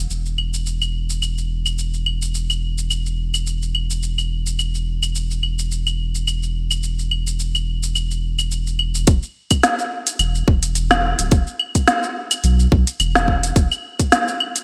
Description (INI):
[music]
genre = organic downtempo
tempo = 107 BPM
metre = 4/4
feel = swing 55% on 16ths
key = unclear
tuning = A4 = 440 Hz
[part]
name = warm sub bass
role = bass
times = 0.0-13.7 s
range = D1 to B1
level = -24 LUFS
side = equal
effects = sidechain pumping
[part]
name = organic electronic drum kit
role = drums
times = 0.1-14.6 s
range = claves, hi-hat, shaker, snare drum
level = -22 LUFS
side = equal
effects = gated reverb
[part]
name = electronic kick drum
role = drums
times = 9.1-14.1 s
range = none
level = -18 LUFS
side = equal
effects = none
[sound]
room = light reverb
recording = bright 1980s-style digital production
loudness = -20 LUFS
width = mono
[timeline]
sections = 0.1-9.1 A section; 9.1-14.6 B section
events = none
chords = none